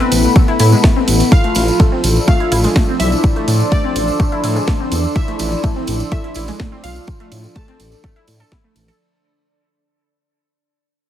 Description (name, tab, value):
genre	melodic techno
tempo	125 BPM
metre	4/4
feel	straight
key	unclear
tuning	A4 = 440 Hz
part	soft octave-layered synth lead	melody	0.0-8.9 s	B3 to A4	-21 LUFS	left 2 dB	chorus, phaser, sidechain pumping, ping-pong delay
part	glassy wavetable pluck	second line	0.0-8.9 s	B4 to A5	-27 LUFS	equal	chorus, sidechain pumping, dub echo
part	dark analog pad	sustained chords	0.0-9.0 s	F3 to E6	-25 LUFS	right 1 dB	chorus, sidechain pumping
part	warbly dusty pluck	arpeggios	0.0-8.9 s	G#3 to A4	-23 LUFS	left 1 dB	phaser, lush chorus, cassette tape, sidechain pumping, dub echo
part	house drum kit	drums	0.0-9.0 s	hi-hat, ride cymbal, snare drum	-25 LUFS	right 1 dB	none
part	deep dark ambient pad	texture	0.0-9.0 s	D4 to C6	-25 LUFS	equal	chorus, built-in reverb, sidechain pumping
part	dark detuned saw bass	bass	0.1-8.9 s	A1 to A2	-16 LUFS	equal	sidechain pumping
part	tambourine	percussion	0.1-9.0 s	none	-27 LUFS	right 3 dB	none
part	electronic kick drum	drums	0.4-8.6 s	none	-13 LUFS	equal	none
room	light reverb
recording	heavily compressed radio sound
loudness	-12 LUFS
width	side -11 dB against mid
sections	0.0-9.0 A section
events	drop 0.0-9.0; fade-out 1.3-9.0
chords	0.0 Am; 1.3 Dm7/A